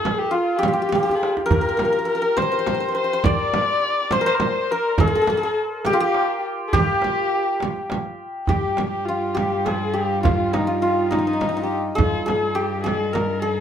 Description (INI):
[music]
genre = Persian modal ensemble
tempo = 69 BPM (dotted quarters)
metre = 6/8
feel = straight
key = G dastgah shur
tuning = A4 = 440 Hz
[part]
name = santur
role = melody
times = 0.0-13.6 s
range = Eb4 to D5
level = -22 LUFS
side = equal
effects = none
[part]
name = dark kamancheh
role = second line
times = 0.0-13.6 s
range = Eb4 to D5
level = -24 LUFS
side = left 3 dB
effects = none
[part]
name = frame drum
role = percussion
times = 0.1-13.3 s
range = none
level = -26 LUFS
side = right 3 dB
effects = none
[part]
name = tombak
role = percussion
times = 0.1-13.3 s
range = none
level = -26 LUFS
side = right 2 dB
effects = none
[part]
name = clear cello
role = drone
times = 8.5-13.6 s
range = G2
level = -28 LUFS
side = equal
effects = none
[sound]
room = moderate studio reverb, RT60 0.6 s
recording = none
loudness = -19 LUFS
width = side -8 dB against mid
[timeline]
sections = 0.0-8.5 A section; 8.5-13.6 B section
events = drum fill 0.9-1.5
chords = none